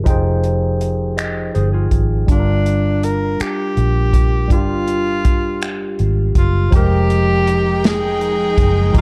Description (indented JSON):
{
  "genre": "slow six-eight R&B",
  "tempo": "54 BPM (dotted quarters)",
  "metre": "6/8",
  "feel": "straight",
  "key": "F dorian",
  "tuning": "A4 = 440 Hz",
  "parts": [
    { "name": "barky tine electric piano", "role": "accompaniment", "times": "0.0-9.0 s", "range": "F3 to G5", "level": "-24 LUFS", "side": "equal", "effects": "phaser" },
    { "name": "vintage muted fingered electric bass", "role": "bass", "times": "0.0-9.0 s", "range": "F1 to Bb1", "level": "-20 LUFS", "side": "equal", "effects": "none" },
    { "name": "warm soul drum kit", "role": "drums", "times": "0.1-9.0 s", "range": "finger snaps, hi-hat, kick drum, snare drum", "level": "-19 LUFS", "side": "equal", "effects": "none" },
    { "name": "mellow electric guitar", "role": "second line", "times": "1.2-2.3 s", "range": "F4 to Eb5", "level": "-28 LUFS", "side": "equal", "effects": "none" },
    { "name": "warm tenor saxophone", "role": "melody", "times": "2.3-9.0 s", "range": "D4 to Bb4", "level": "-22 LUFS", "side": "equal", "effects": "none" },
    { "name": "rich studio string section", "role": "sustained chords", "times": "6.7-9.0 s", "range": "F3 to G5", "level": "-28 LUFS", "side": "equal", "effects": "none" }
  ],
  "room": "small room reverb",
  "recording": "dark, warm production",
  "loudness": "-16 LUFS",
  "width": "mono",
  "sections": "0.0-6.7 A section; 6.7-9.0 B section",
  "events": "none",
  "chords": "0.0 Fm11; 2.3 Gm7; 6.7 Fm11"
}